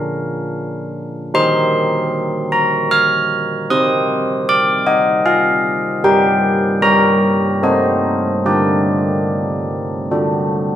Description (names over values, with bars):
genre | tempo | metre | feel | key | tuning
classical, tune for church bells | 76 BPM | 3/4 | uneven beats | G minor | A4 = 441 Hz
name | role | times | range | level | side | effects
carillon bells | solo | 0.0-10.8 s | G3 to F6 | -14 LUFS | equal | none
room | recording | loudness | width
moderate recital hall reverb, RT60 1.5 s | none | -13 LUFS | side -10 dB against mid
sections
0.0-10.8 A section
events
none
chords
0.0 Bb/D; 1.3 Eb; 3.7 Cm; 6.1 Gm; 7.6 Adim/C; 8.5 Gm/D; 10.1 D